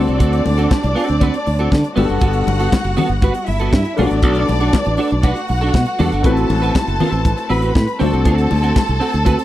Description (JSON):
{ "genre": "disco", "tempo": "119 BPM", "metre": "4/4", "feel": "straight", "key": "unclear", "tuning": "A4 = 440 Hz", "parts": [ { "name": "rich studio string section", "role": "second line", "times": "0.0-9.4 s", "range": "D4 to B5", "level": "-21 LUFS", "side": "right 1 dB", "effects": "none" }, { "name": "clean electric guitar", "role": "accompaniment", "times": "0.0-9.4 s", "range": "B3 to B4", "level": "-21 LUFS", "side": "right 3 dB", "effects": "ensemble chorus" }, { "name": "warm grand piano", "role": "accompaniment", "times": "0.0-9.4 s", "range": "G3 to C5", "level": "-23 LUFS", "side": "left 6 dB", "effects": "none" }, { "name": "modern bright fingered electric bass", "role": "bass", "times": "0.0-9.3 s", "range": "F#1 to D3", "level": "-18 LUFS", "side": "equal", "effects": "none" }, { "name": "tight funk drum kit", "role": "drums", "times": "0.1-9.4 s", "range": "hi-hat, kick drum, snare drum", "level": "-16 LUFS", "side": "equal", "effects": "none" }, { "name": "congas", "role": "percussion", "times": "0.5-9.4 s", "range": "none", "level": "-23 LUFS", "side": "left 4 dB", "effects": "none" } ], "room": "light reverb", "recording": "dry, close 1970s-style studio recording", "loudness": "-14 LUFS", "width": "side -14 dB against mid", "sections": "0.0-9.4 A section", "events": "none", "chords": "0.0 D7; 2.0 Gmaj9; 4.0 Bm7; 6.2 Am69; 8.0 D7", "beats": "| 0.20 0.71 1.21 1.71 | 2.22 2.72 3.22 3.73 | 4.23 4.74 5.24 5.74 | 6.24 6.75 7.25 7.75 | 8.26 8.76 9.26" }